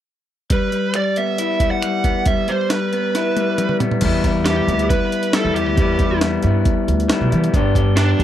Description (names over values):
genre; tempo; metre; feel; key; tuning
indie rock; 137 BPM; 4/4; straight; unclear; A4 = 437 Hz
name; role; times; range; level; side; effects
bluesy overdriven lead guitar; melody; 0.5-8.2 s; D4 to F#5; -21 LUFS; right 4 dB; distortion, slapback echo
electric guitar through a small old amp; riff; 0.5-8.2 s; G3 to G4; -20 LUFS; left 4 dB; spring reverb
jungle sampler-style drum kit; drums; 0.5-8.2 s; crash cymbal, finger snaps, hi-hat, kick drum, snare drum, toms; -20 LUFS; right 1 dB; none
upright bass; bass; 4.0-8.2 s; B1 to E3; -19 LUFS; right 1 dB; none
room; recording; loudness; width
little or no reverb; dry, close 1970s-style studio recording; -16 LUFS; side -11 dB against mid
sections
0.5-4.0 A section; 4.0-8.2 B section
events
drum fill 3.2-4.0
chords
0.5 Em; 7.5 G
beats
| 0.51 0.95 1.39 1.83 | 2.27 2.71 3.15 3.59 | 4.03 4.47 4.91 5.35 | 5.79 6.23 6.66 7.10 | 7.54 7.98